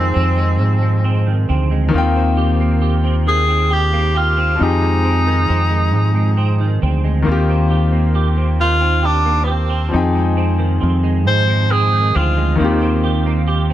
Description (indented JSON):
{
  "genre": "slow six-eight R&B",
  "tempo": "45 BPM (dotted quarters)",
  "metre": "6/8",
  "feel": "straight",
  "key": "F minor",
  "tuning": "A4 = 440 Hz",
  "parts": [
    { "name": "warm tenor saxophone", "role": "melody", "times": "0.0-12.6 s", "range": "B3 to C5", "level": "-19 LUFS", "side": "equal", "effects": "none" },
    { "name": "semi-hollow electric guitar", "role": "second line", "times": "0.0-13.7 s", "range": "F2 to G4", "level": "-22 LUFS", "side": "right 6 dB", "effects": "ensemble chorus, digital delay" },
    { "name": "bright concert grand piano", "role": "accompaniment", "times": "0.0-13.7 s", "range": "Eb3 to G5", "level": "-21 LUFS", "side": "left 4 dB", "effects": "none" },
    { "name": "deep dub fingered electric bass", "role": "bass", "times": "0.0-13.7 s", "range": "D2 to Ab2", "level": "-16 LUFS", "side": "equal", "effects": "none" }
  ],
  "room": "little or no reverb",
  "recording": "none",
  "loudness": "-13 LUFS",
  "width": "side -12 dB against mid",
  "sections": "0.0-13.7 A section",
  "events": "none",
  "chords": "0.0 Fm7; 1.9 Eb6; 4.6 Fm7; 7.3 Eb6; 9.9 Fm7; 12.6 Eb6"
}